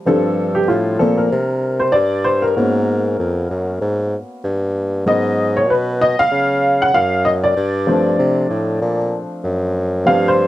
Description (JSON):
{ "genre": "hip hop, jazz-hop", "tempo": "96 BPM", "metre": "4/4", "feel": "swing 58% on 16ths", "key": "unclear", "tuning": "A4 = 440 Hz", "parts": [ { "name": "dark upright piano", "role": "accompaniment", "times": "0.0-10.5 s", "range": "F3 to F#5", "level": "-17 LUFS", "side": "equal", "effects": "none" }, { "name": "mellow bassoon", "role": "bass", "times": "0.1-10.5 s", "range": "E#2 to C#3", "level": "-18 LUFS", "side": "equal", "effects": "none" } ], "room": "light reverb", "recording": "dark, warm production", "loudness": "-15 LUFS", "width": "side -15 dB against mid", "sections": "0.0-10.5 A section", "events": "upright piano solo 0.0-10.5", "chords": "0.0 Gm11; 2.6 G#m11; 7.6 Gm11" }